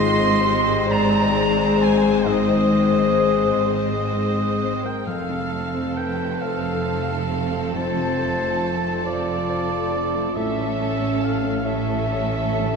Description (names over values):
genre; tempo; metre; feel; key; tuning
cinematic; 43-46 BPM (dotted quarters); 6/8; rubato; unclear; A4 = 440 Hz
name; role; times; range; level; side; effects
rich studio violin section; melody; 0.0-12.8 s; A4 to C5; -31 LUFS; left 4 dB; none
concert flute; second line; 0.0-12.8 s; F4 to Eb5; -29 LUFS; left 2 dB; none
warm oboe; second line; 0.0-12.8 s; D5 to C6; -26 LUFS; right 3 dB; none
warm studio violin section; second line; 0.0-12.8 s; D5 to C6; -31 LUFS; left 2 dB; none
dark grand piano; accompaniment; 0.0-12.8 s; F2 to C#5; -30 LUFS; left 3 dB; none
rich symphonic viola section; accompaniment; 0.0-12.8 s; Ab3 to C#4; -30 LUFS; left 1 dB; none
mellow French horn section; sustained chords; 0.0-12.8 s; D3 to C5; -26 LUFS; left 5 dB; none
rich studio cello section; bass; 0.0-12.8 s; F2 to A2; -25 LUFS; equal; none
rich studio double bass section; bass; 0.0-12.8 s; F1 to A1; -28 LUFS; right 3 dB; none
room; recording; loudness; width
wet concert hall reverb, RT60 2.3 s; dark, warm production; -19 LUFS; side -5 dB against mid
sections
0.0-12.8 A section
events
none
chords
0.0 Ab; 5.1 F; 10.4 A